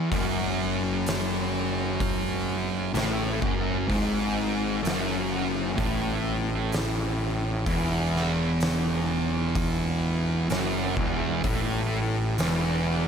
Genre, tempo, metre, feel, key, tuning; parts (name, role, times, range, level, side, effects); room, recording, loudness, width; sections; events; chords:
stoner and doom metal; 64 BPM; 4/4; straight; A4 = 440 Hz
thick fuzz guitar; riff; 0.0-13.1 s; E2 to A2; -26 LUFS; equal; distortion
fuzz picked electric bass; bass; 0.1-13.1 s; E1 to A1; -32 LUFS; equal; overdrive
oversized low-tuned drum kit; drums; 0.1-12.6 s; hi-hat, kick drum, snare drum; -31 LUFS; equal
light reverb, small room reverb; -24 LUFS; side -7 dB against mid
0.0-13.1 A section
0.1 F#madd9; 7.7 Esus24